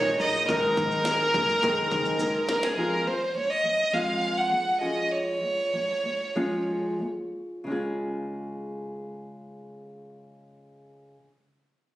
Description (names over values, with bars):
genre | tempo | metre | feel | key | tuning
acoustic pop | 89-105 BPM | 4/4 | straight | Db major | A4 = 442 Hz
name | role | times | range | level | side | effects
warm violin | melody | 0.0-7.0 s | Ab4 to Gb5 | -25 LUFS | right 1 dB | plate reverb
nylon-string guitar | accompaniment | 0.0-11.2 s | Ab2 to Bb4 | -29 LUFS | equal | none
muted studio string section | sustained chords | 0.0-2.7 s | Bb2 to Eb4 | -39 LUFS | left 2 dB | none
upright bass | bass | 0.0-2.4 s | Gb1 to Bb1 | -38 LUFS | right 1 dB | none
glitchy drum kit | drums | 0.2-2.8 s | kick drum, shaker, snare drum | -34 LUFS | equal | none
room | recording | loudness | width
moderate studio reverb, RT60 0.6 s | recorded on a phone in the room, studio reverb | -24 LUFS | side -15 dB against mid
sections
0.0-2.8 A section; 2.8-7.7 B section; 7.7-10.4 C section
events
drum fill 2.2-2.8; slowing down 2.8-7.7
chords
0.0 Absus2; 2.8 Fm; 4.8 Db/F; 7.7 Db